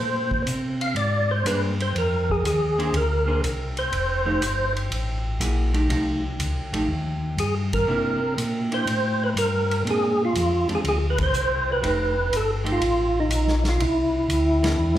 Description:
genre	soul jazz organ trio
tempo	122 BPM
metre	4/4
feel	swing 69% on 8ths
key	unclear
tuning	A4 = 438 Hz
part	percussive tonewheel organ	melody	0.0-15.0 s	Eb4 to F5	-23 LUFS	right 1 dB	slow rotary speaker, overdrive, chorus vibrato
part	mellow tonewheel organ	bass	0.0-15.0 s	F1 to C3	-25 LUFS	left 1 dB	chorus vibrato, slow rotary speaker
part	vintage drum kit	drums	0.3-15.0 s	hi-hat, kick drum, ride cymbal, snare drum	-31 LUFS	equal	none
part	vintage hollow-body jazz guitar	accompaniment	1.5-14.8 s	E3 to C5	-30 LUFS	right 1 dB	none
room	moderate recital hall reverb, RT60 1.5 s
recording	recorded in a church or concert hall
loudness	-21 LUFS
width	side -12 dB against mid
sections	0.0-15.0 A section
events	band accent 7.6, 11.1; drum fill 14.8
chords	0.0 Bb9; 3.9 F9; 7.9 C9; 9.9 Bb9; 11.8 F9; 13.8 Cadd9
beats	0.47 0.96 1.46 | 1.95 2.44 2.94 3.43 | 3.93 4.42 4.92 5.41 | 5.91 6.40 6.89 7.39 | 7.88 8.38 8.87 9.36 | 9.86 10.35 10.84 11.34 | 11.83 12.32 12.81 13.31 | 13.80 14.29 14.78

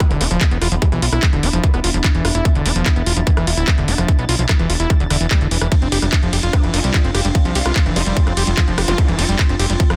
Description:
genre	psychedelic trance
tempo	147 BPM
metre	4/4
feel	straight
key	E phrygian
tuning	A4 = 440 Hz
part	vowel-sweep wobble bass	second line	0.0-1.8, 6.5-8.3 s	E3 to B3	-36 LUFS	equal	none
part	swarming drone	sustained chords	0.3-10.0 s	D4	-31 LUFS	equal	built-in reverb, sidechain pumping
part	overdriven acid bass	riff	0.0-10.0 s	D3 to G4	-25 LUFS	equal	distortion, sidechain pumping, tape echo
part	drum and bass drum kit	drums	0.0-10.0 s	handclaps, hi-hat, ride cymbal, rim click	-24 LUFS	equal	none
part	electronic kick drum	drums	0.0-9.9 s	none	-17 LUFS	equal	none
part	warbly tape-like pad	texture	0.0-10.0 s	B3 to C6	-32 LUFS	equal	chorus, built-in reverb, phaser, sidechain pumping
part	plucky analog bass	bass	0.1-10.0 s	D1 to C2	-22 LUFS	equal	none
part	zap	sound effects	8.9-9.0 s	none	-29 LUFS	equal	none
room	digital ambience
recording	dense, heavily limited modern master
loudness	-16 LUFS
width	mono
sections	0.0-10.0 A section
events	none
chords	0.0 E5; 5.7 F5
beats	0.00 0.41 | 0.82 1.23 1.64 2.04 | 2.45 2.86 3.27 3.68 | 4.08 4.49 4.90 5.31 | 5.72 6.12 6.53 6.94 | 7.35 7.76 8.17 8.57 | 8.98 9.39 9.80

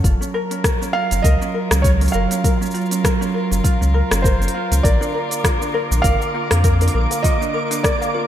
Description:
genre	folktronica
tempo	100 BPM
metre	4/4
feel	swing 56% on 16ths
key	unclear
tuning	A4 = 440 Hz
part	muted string quartet	sustained chords	0.0-8.3 s	D3 to Bb4	-24 LUFS	right 4 dB	none
part	ukulele	arpeggios	0.0-8.3 s	Db4 to F5	-26 LUFS	left 4 dB	ping-pong delay
part	warm sub bass	bass	0.0-7.1 s	Gb1 to F2	-17 LUFS	equal	none
part	electronic kick drum	drums	0.0-8.0 s	none	-18 LUFS	equal	none
part	organic electronic drum kit	drums	0.0-8.1 s	hi-hat, rim click, shaker	-24 LUFS	equal	none
part	felt-muted upright piano	melody	0.9-8.3 s	C5 to F5	-24 LUFS	right 2 dB	vintage 12-bit sampler grit, ping-pong delay
part	flickering grainy texture	texture	5.1-8.3 s	D6	-28 LUFS	right 1 dB	built-in reverb
part	kalimba	second line	5.0-8.3 s	Bb4	-30 LUFS	left 2 dB	ping-pong delay
room	light reverb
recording	none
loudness	-16 LUFS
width	side -11 dB against mid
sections	0.0-8.3 A section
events	none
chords	0.0 Gbmaj7; 4.8 Bb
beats	| 0.04 0.64 1.24 1.84 | 2.44 3.04 3.64 4.24 | 4.84 5.44 6.04 6.64 | 7.24 7.84

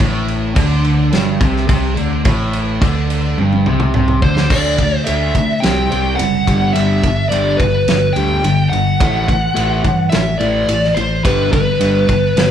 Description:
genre	hard rock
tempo	107 BPM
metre	4/4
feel	straight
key	A dorian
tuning	A4 = 440 Hz
part	overdriven semi-hollow guitar	riff	0.0-12.5 s	G2 to D4	-17 LUFS	equal	none
part	fingered electric bass	bass	0.0-12.5 s	F#1 to C3	-19 LUFS	equal	none
part	big rock drum kit	drums	0.0-12.5 s	crash cymbal, kick drum, ride cymbal, snare drum, toms	-18 LUFS	equal	none
part	smooth overdriven lead guitar	melody	4.2-12.5 s	B4 to G5	-17 LUFS	equal	none
room	moderate large studio reverb, RT60 1.2 s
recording	band playing live in one room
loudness	-12 LUFS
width	side -9 dB against mid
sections	0.0-4.5 A section; 4.5-12.5 B section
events	drum fill 3.4-4.5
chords	0.0 Am; 4.5 Dsus2; 5.6 C5; 6.5 G; 9.0 A5; 11.2 G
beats	| 0.00 0.57 1.13 1.69 | 2.25 2.82 3.38 3.94 | 4.50 5.07 5.63 6.19 | 6.75 7.32 7.88 8.44 | 9.00 9.56 10.12 10.69 | 11.24 11.81 12.37

